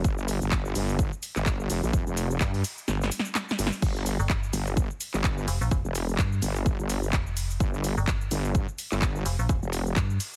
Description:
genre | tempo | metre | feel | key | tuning
bass house | 127 BPM | 4/4 | swing 57% on 16ths | G minor | A4 = 437 Hz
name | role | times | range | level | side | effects
wobble bass | bass | 0.0-9.9 s | F1 to G2 | -30 LUFS | equal | chorus, overdrive, sidechain pumping
electronic kick drum | drums | 0.0-10.1 s | none | -29 LUFS | equal | none
house drum kit | drums | 0.0-10.4 s | crash cymbal, handclaps, hi-hat, shaker, snare drum | -34 LUFS | equal | none
metallic FM bass | bass | 4.2-10.2 s | F1 to G2 | -30 LUFS | equal | sidechain pumping
room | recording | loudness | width
little or no reverb | heavily compressed radio sound | -27 LUFS | mono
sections
0.0-10.4 A section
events
kick drops out 2.9-3.8; drum fill 2.9-3.8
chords
none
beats
| 0.04 0.52 0.99 1.46 | 1.93 2.41 2.88 3.35 | 3.82 4.30 4.77 5.24 | 5.71 6.19 6.66 7.13 | 7.60 8.08 8.55 9.02 | 9.49 9.96

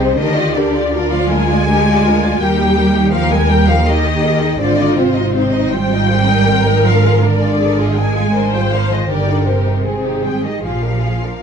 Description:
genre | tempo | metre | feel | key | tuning
classical, slow romantic movement for string orchestra | 81 BPM | 3/4 | rubato | unclear | A4 = 442 Hz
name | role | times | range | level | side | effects
dark symphonic violin section | melody | 0.0-11.4 s | C5 to Ab5 | -20 LUFS | left 4 dB | none
warm symphonic violin section | second line | 0.0-11.4 s | C4 to Eb5 | -22 LUFS | left 2 dB | none
warm symphonic viola section | accompaniment | 0.0-11.4 s | Eb4 to C5 | -20 LUFS | equal | none
rich symphonic cello section | bass | 0.0-11.4 s | C3 to Ab3 | -18 LUFS | right 1 dB | none
warm symphonic double bass section | bass | 0.0-11.4 s | G1 to Eb2 | -17 LUFS | right 2 dB | none
room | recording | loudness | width
light reverb | dark, warm production | -12 LUFS | side -7 dB against mid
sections
0.0-11.4 A section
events
none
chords
0.2 Bb/D; 2.4 Eb; 4.6 Ab; 9.1 Eb/G; 9.8 Abmaj7; 10.6 Bb7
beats
| 0.17 0.92 1.66 | 2.40 3.13 3.87 | 4.60 5.36 6.12 | 6.86 7.59 8.33 | 9.09 9.84 10.63

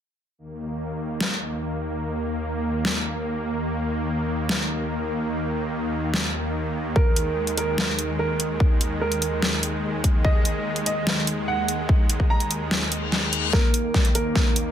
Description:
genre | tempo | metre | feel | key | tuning
heavy wobble dubstep | 146 BPM | 4/4 | half-time | unclear | A4 = 440 Hz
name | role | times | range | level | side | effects
supersaw pad | sustained chords | 0.4-14.7 s | Eb2 to Bb3 | -26 LUFS | equal | sidechain pumping, low-pass filter
dubstep drum kit | drums | 1.2-14.6 s | hi-hat, snare drum | -25 LUFS | equal | overdrive
warm baby grand piano | melody | 7.0-14.7 s | Bb3 to Bb5 | -28 LUFS | right 3 dB | digital delay
electronic kick drum | drums | 7.0-14.4 s | none | -20 LUFS | equal | overdrive
reverse cymbal and riser | sound effects | 12.9-14.7 s | none | -29 LUFS | left 8 dB | none
room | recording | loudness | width
moderate digital room reverb, RT60 1.1 s | dense, heavily limited modern master | -21 LUFS | side -9 dB against mid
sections
0.4-13.5 A section; 13.5-14.7 B section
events
filter sweep on supersaw synth 0.4-13.5; reverse cymbal 12.9-13.5; kick drops out 13.1-13.5; build-up 13.5-14.7; drum fill 13.5-14.7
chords
0.4 Eb5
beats
| 0.38 0.79 1.21 1.62 | 2.03 2.44 2.85 3.26 | 3.67 4.08 4.49 4.90 | 5.32 5.73 6.14 6.55 | 6.96 7.37 7.78 8.19 | 8.60 9.01 9.42 9.84 | 10.25 10.66 11.07 11.48 | 11.89 12.30 12.71 13.12 | 13.53 13.95 14.36

